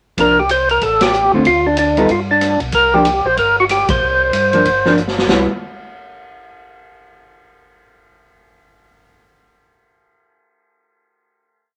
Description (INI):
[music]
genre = soul jazz organ trio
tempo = 188 BPM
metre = 4/4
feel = swing 61% on 8ths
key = unclear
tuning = A4 = 442 Hz
[part]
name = percussive tonewheel organ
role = melody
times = 0.2-4.9 s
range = D4 to C5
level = -15 LUFS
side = equal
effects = overdrive, slow rotary speaker
[part]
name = hollow-body jazz guitar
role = accompaniment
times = 0.2-5.5 s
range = D3 to A4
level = -18 LUFS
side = equal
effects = none
[part]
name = mellow tonewheel organ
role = bass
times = 0.2-5.5 s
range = G1 to G2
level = -28 LUFS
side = equal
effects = overdrive, chorus vibrato, slow rotary speaker
[part]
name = swinging big-band drum kit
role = drums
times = 0.2-5.4 s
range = hi-hat, kick drum, ride cymbal, rim click, snare drum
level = -24 LUFS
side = equal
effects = none
[sound]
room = light reverb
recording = none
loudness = -14 LUFS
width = mono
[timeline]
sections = 0.2-5.3 A section; 5.3-6.6 final chord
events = band accent 1.0, 3.9; drum fill 5.0-5.3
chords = 0.2 C9sus4; 0.8 Am7; 1.5 Dm; 2.1 G; 2.7 C9sus4; 5.3 Cmaj7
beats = | 0.18 0.50 0.82 1.14 | 1.46 1.78 2.10 2.42 | 2.74 3.06 3.38 3.70 | 4.02 4.33 4.66 4.97 | 5.29